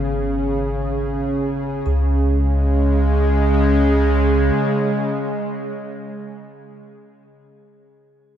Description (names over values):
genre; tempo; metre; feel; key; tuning
ambient; free time; none; none; unclear; A4 = 439 Hz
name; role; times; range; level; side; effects
kalimba; arpeggios; 0.0-6.0 s; B3 to G#4; -40 LUFS; right 2 dB; none
warm sub bass; bass; 0.0-4.5 s; G#1 to C#2; -19 LUFS; equal; none
bowed-like drone; drone; 0.0-6.0 s; C#3 to G#4; -20 LUFS; right 1 dB; built-in reverb
room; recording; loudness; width
moderate lush hall reverb, RT60 2.7 s; dreamy mix soaked in reverb; -16 LUFS; side -9 dB against mid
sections
0.0-1.9 A section; 1.9-5.4 B section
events
none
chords
0.0 G#m; 1.9 C#5